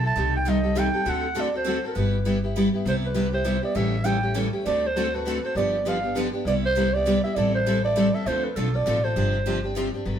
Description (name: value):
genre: acoustic string swing (jazz manouche)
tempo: 200 BPM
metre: 3/4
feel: swing 60% on 8ths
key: C major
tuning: A4 = 443 Hz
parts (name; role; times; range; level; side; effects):
- growling clarinet; melody; 0.0-9.8 s; A4 to A5; -26 LUFS; right 2 dB; none
- picked steel-string acoustic guitar; accompaniment; 0.0-10.2 s; C3 to A4; -27 LUFS; left 1 dB; none
- upright bass; bass; 0.0-10.2 s; G1 to D2; -28 LUFS; left 1 dB; none
- picked steel-string acoustic guitar; accompaniment; 0.2-9.9 s; C3 to A4; -30 LUFS; right 2 dB; none
room: moderate stone room reverb, RT60 1.1 s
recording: band playing live in one room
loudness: -21 LUFS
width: side -9 dB against mid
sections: 0.0-2.9 A section; 2.9-10.1 B section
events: none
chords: 0.2 Cm6; 1.1 D7; 2.0 G6; 2.9 Cmaj7; 3.8 A7; 4.7 D7; 5.6 G7; 6.5 Cmaj7; 7.4 Am7; 8.3 Dm7; 9.2 G7sus4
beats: | 0.16 0.46 0.76 | 1.06 1.36 1.66 | 1.96 2.26 2.56 | 2.86 3.16 3.46 | 3.76 4.06 4.36 | 4.66 4.96 5.26 | 5.56 5.86 6.16 | 6.46 6.76 7.06 | 7.36 7.66 7.96 | 8.26 8.56 8.86 | 9.16 9.46 9.77 | 10.07